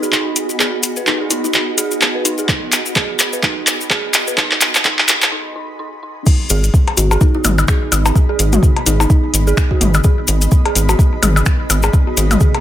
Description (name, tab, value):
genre	minimal techno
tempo	127 BPM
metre	4/4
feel	swing 58% on 16ths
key	G# minor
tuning	A4 = 440 Hz
part	dark detuned synth bell	riff	0.0-12.5 s	D#4 to B4	-24 LUFS	right 2 dB	chorus, sidechain pumping, low-pass filter, dub echo
part	maracas	percussion	0.0-12.5 s	none	-21 LUFS	left 3 dB	none
part	granular cloud pad	texture	0.0-12.6 s	B3 to B5	-27 LUFS	right 1 dB	built-in reverb, sidechain pumping
part	swarming drone	texture	0.0-12.6 s	D#4 to F#4	-28 LUFS	right 4 dB	built-in reverb, sidechain pumping
part	booming analog drum machine	drums	0.1-12.6 s	crash cymbal, finger snaps, handclaps, hi-hat	-16 LUFS	equal	none
part	kalimba	melody	1.3-1.5, 7.0-9.1 s	D#4 to F#4	-26 LUFS	left 2 dB	low-pass filter, tape echo
part	electronic kick drum	drums	2.5-12.5 s	none	-13 LUFS	equal	none
part	rubbery square bass	bass	6.5-12.4 s	G#1	-14 LUFS	equal	sidechain pumping
part	electronic percussion blips and toms	percussion	6.9-12.6 s	none	-18 LUFS	left 3 dB	tape echo
room	light reverb, digital ambience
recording	high-pass filter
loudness	-12 LUFS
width	side -12 dB against mid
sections	0.0-6.3 A section; 6.3-12.6 B section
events	build-up 0.0-6.3; drum fill 0.0-5.3; filter sweep on synth bell 0.0-6.3; break 5.3-6.3; drop 6.3-12.6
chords	0.0 G#m